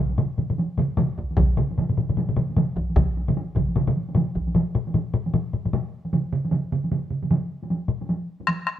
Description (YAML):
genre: japanese traditional, taiko drum ensemble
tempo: 152 BPM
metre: 4/4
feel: swing 60% on 16ths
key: none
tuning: none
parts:
  - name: taiko ensemble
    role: percussion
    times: 0.1-8.6 s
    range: none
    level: -26 LUFS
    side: right 1 dB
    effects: none
  - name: solo taiko drums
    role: percussion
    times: 0.2-8.8 s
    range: none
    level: -25 LUFS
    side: left 4 dB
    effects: none
  - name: solo taiko drums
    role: percussion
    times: 0.2-7.4 s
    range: none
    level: -26 LUFS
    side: right 4 dB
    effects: none
  - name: taiko ensemble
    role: percussion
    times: 1.2-4.5 s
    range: none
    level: -24 LUFS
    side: equal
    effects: none
room: moderate stone room reverb, RT60 1.0 s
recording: band playing live in one room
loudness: -22 LUFS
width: side -11 dB against mid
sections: 0.0-4.5 A section; 4.5-8.8 B section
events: none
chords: none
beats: 0.18 0.58 0.98 | 1.38 1.77 2.17 2.57 | 2.97 3.36 3.76 4.16 | 4.55 4.94 5.34 5.73 | 6.12 6.52 6.91 7.30 | 7.69 8.08 8.47